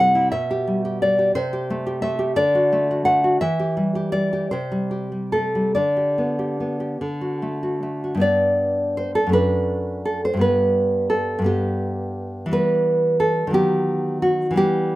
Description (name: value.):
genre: romantic piece for solo classical guitar.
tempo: 46-60 BPM (dotted quarters).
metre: 6/8.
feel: rubato.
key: G major.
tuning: A4 = 435 Hz.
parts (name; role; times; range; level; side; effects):
nylon-string guitar; solo; 0.0-15.0 s; F#2 to F#5; -18 LUFS; equal; none.
room: light reverb.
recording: rough home demo mix.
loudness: -19 LUFS.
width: side -17 dB against mid.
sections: 0.0-8.2 A section; 8.2-15.0 B section.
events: none.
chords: 0.3 G/B; 1.3 Am7/C; 2.4 D; 3.4 Em; 4.5 Am7/C; 5.8 G/D; 7.0 D; 8.2 G; 12.5 Em; 13.6 B/D#.